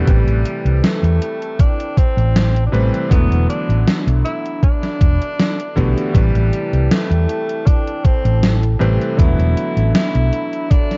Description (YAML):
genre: vaporwave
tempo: 79 BPM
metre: 4/4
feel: straight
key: A dorian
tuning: A4 = 440 Hz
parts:
  - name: clear tenor saxophone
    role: melody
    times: 0.0-11.0 s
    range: G3 to E4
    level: -26 LUFS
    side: equal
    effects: tape echo
  - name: clear electric grand piano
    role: accompaniment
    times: 0.0-11.0 s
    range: C3 to B4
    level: -26 LUFS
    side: equal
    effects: subtle chorus
  - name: warbly tape-like pad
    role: sustained chords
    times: 0.1-11.0 s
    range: D4 to B5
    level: -32 LUFS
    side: equal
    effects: chorus, built-in reverb
  - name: hollow-body short-scale fingered electric bass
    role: bass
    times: 0.1-10.3 s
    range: E1 to E2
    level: -18 LUFS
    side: equal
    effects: none
  - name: electronic kick drum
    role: drums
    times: 0.1-10.9 s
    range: none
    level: -16 LUFS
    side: equal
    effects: none
  - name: gated 80s digital drum machine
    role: drums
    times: 0.1-11.0 s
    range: hi-hat, snare drum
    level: -21 LUFS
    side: equal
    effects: gated reverb, gated reverb snare
room: little or no reverb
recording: dark, warm production, cassette tape, nothing above 7.6 kHz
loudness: -16 LUFS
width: mono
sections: 0.0-11.0 A section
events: none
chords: 0.1 Am7; 3.1 E7sus4; 6.1 Am7; 9.2 E7sus4